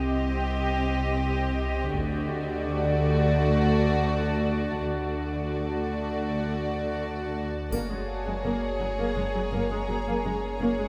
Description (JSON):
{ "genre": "cinematic, suspense film score", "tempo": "83 BPM", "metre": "4/4", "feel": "straight", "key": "unclear", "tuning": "A4 = 444 Hz", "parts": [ { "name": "rich studio violin section", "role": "melody", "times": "0.0-10.9 s", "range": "C#5 to Eb5", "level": "-37 LUFS", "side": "equal", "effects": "none" }, { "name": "clear studio violin section", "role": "second line", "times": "0.0-10.9 s", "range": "F#4 to G#4", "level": "-36 LUFS", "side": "equal", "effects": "none" }, { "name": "warm studio viola section", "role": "accompaniment", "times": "0.0-10.9 s", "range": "F#3 to C4", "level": "-33 LUFS", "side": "equal", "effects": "none" }, { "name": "granular cloud pad", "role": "sustained chords", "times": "0.0-10.9 s", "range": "F#4 to A#5", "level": "-38 LUFS", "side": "equal", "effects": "built-in reverb" }, { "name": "rich studio double bass section", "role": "bass", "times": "0.0-10.7 s", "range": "F#1 to D2", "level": "-36 LUFS", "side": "equal", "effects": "none" }, { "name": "warm studio cello section", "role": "bass", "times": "0.0-10.9 s", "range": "F#2 to D3", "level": "-35 LUFS", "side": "equal", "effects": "none" }, { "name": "pure sine sub bass", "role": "drone", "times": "0.0-10.9 s", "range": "F#1 to D2", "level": "-36 LUFS", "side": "equal", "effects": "lush chorus" }, { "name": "concert harp", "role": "texture", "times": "0.0-10.9 s", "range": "C#4 to C6", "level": "-42 LUFS", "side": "equal", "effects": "none" }, { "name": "taiko ensemble", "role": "drums", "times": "1.9-3.3, 7.7-9.1 s", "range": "none", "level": "-42 LUFS", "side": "equal", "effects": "none" }, { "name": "triangle", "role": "percussion", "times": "7.7-9.1 s", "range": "none", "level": "-50 LUFS", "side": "equal", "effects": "none" } ], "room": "wet huge ambient reverb, RT60 8.6 s", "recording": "in a vast, echoing space", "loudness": "-27 LUFS", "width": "mono", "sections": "0.0-10.9 A section", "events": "none", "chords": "0.0 Cm; 1.9 D; 7.7 F#add9" }